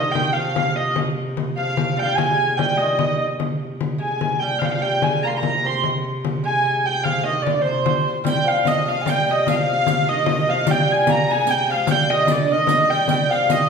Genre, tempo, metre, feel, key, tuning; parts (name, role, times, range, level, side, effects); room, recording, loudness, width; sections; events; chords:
medieval dance; 99 BPM (dotted quarters); 6/8; straight; C minor; A4 = 440 Hz
dark hurdy-gurdy; melody; 0.0-13.7 s; C5 to C6; -20 LUFS; right 2 dB
lute; second line; 0.0-13.7 s; C3 to C4; -26 LUFS; right 1 dB
clear viola da gamba; drone; 0.0-13.7 s; C3; -28 LUFS; right 1 dB
frame drum; percussion; 0.2-13.7 s; -24 LUFS; left 4 dB
breathy mellow alto recorder; second line; 8.3-13.7 s; Eb5 to Bb5; -27 LUFS; left 6 dB
riq; percussion; 8.3-13.7 s; -31 LUFS; right 4 dB
wet recital hall reverb, RT60 1.5 s; recorded in a church or concert hall; -17 LUFS; side -5 dB against mid
0.0-8.3 A section; 8.3-13.7 B section